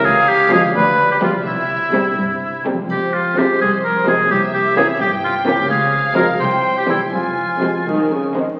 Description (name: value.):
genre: cinematic, playful, whimsical film cue.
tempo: 85 BPM (dotted quarters).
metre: 6/8.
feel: straight.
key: F minor.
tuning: A4 = 440 Hz.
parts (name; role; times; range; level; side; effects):
dark studio violin section; melody; 0.0-8.2 s; C5 to Ab5; -26 LUFS; equal; none.
warm oboe; second line; 0.0-7.9 s; E4 to C5; -18 LUFS; equal; none.
concert harp; arpeggios; 0.0-8.6 s; C3 to G4; -31 LUFS; equal; none.
dark studio double bass section; bass; 0.1-8.5 s; F1 to D2; -34 LUFS; equal; none.
warm studio cello section; bass; 0.1-8.5 s; C2 to G2; -31 LUFS; equal; none.
warm studio violin section; second line; 0.5-8.5 s; G3 to Db4; -27 LUFS; equal; none.
dark studio viola section; accompaniment; 0.5-8.4 s; C3 to G3; -24 LUFS; equal; none.
triangle; percussion; 2.9-3.8 s; none; -54 LUFS; equal; none.
room: wet recital hall reverb, RT60 1.7 s.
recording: very old 78 rpm record, vinyl crackle.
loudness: -16 LUFS.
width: mono.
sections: 0.0-8.6 A section.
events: none.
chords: 0.1 Db; 0.8 G7/D; 1.5 C; 2.9 Fm; 4.3 C7b9; 5.7 Dbmaj7; 6.4 C; 7.1 Fm.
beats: | 0.06 0.76 | 1.46 2.18 | 2.90 3.61 | 4.31 5.01 | 5.70 6.41 | 7.13 7.87.